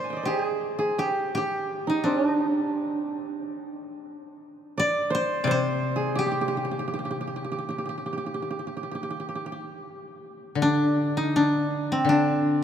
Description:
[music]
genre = japanese traditional, Japanese chamber music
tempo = 71-89 BPM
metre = 4/4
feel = rubato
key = G miyako bushi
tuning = A4 = 440 Hz
[part]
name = koto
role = melody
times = 0.0-12.6 s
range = C4 to D5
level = -26 LUFS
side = equal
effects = none
[part]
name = koto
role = second line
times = 0.0-11.6 s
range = D4 to C6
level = -29 LUFS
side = right 2 dB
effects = none
[part]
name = koto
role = accompaniment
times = 5.4-12.6 s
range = C3 to D3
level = -28 LUFS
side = left 3 dB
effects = none
[sound]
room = wet cathedral reverb, RT60 5.5 s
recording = none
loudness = -24 LUFS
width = side -9 dB against mid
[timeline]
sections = 0.0-10.6 A section; 10.6-12.6 B section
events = none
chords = none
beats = 0.62 1.34 | 2.05 2.75 3.44 4.12 | 4.80 5.49 6.18 6.88 | 7.58 8.30 9.03 9.83 | 10.61 11.35 12.09

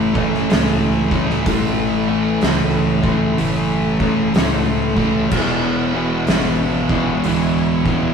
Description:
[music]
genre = stoner and doom metal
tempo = 62 BPM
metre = 4/4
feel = swing 64% on 8ths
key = unclear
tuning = A4 = 438 Hz
[part]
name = tonewheel organ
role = sustained chords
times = 0.0-8.1 s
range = A3 to G#5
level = -30 LUFS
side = equal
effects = slow rotary speaker
[part]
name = crunchy overdriven guitar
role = riff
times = 0.0-8.1 s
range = E2 to A3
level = -21 LUFS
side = equal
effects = none
[part]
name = thick fuzz guitar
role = riff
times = 0.0-8.1 s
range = E2 to A3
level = -22 LUFS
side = left 5 dB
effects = distortion
[part]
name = thick fuzz guitar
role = riff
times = 0.0-8.1 s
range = E2 to A3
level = -22 LUFS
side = right 5 dB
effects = distortion
[part]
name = hollow-body short-scale fingered electric bass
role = bass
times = 0.0-8.1 s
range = D1 to C#2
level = -26 LUFS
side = right 1 dB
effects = overdrive
[part]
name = oversized low-tuned drum kit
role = drums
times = 0.2-8.0 s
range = crash cymbal, hi-hat, kick drum, snare drum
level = -21 LUFS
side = right 1 dB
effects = none
[sound]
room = light reverb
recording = rough rehearsal-room recording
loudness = -15 LUFS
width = side -6 dB against mid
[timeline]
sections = 0.0-8.1 A section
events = none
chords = 0.0 A; 5.3 E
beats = 0.50 | 1.47 2.43 3.39 4.35 | 5.32 6.28 7.24

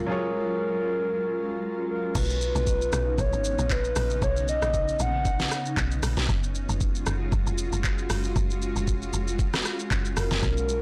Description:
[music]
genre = amapiano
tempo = 116 BPM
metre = 4/4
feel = swing 55% on 16ths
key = B lydian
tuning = A4 = 438 Hz
[part]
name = hollow clarinet-like synth lead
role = melody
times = 0.0-5.8, 10.2-10.8 s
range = A#4 to F#5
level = -31 LUFS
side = equal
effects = chorus, digital delay
[part]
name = clear baby grand piano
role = accompaniment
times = 0.0-2.2 s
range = F#3 to C#5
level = -35 LUFS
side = equal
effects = none
[part]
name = granular cloud pad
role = sustained chords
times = 0.0-10.8 s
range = C#3 to F#4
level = -36 LUFS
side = equal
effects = built-in reverb, sidechain pumping
[part]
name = woody log drum bass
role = bass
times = 2.2-10.8 s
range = E#1 to B1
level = -30 LUFS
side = equal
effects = none
[part]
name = smooth R&B drum kit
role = drums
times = 2.2-10.8 s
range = crash cymbal, handclaps, hi-hat, kick drum, rim click, shaker, snare drum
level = -30 LUFS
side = equal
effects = none
[sound]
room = digital ambience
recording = blown-out, overdriven recording, overdrive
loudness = -26 LUFS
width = mono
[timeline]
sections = 0.0-2.2 A section; 2.2-10.8 B section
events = break 0.1-2.2; drop 2.2-10.8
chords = 0.0 F#maj9; 2.2 Bmaj9; 6.3 F#sus2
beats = | 0.08 0.60 1.12 1.64 | 2.15 2.67 3.19 3.70 | 4.22 4.74 5.26 5.77 | 6.29 6.81 7.33 7.84 | 8.36 8.88 9.39 9.91 | 10.43

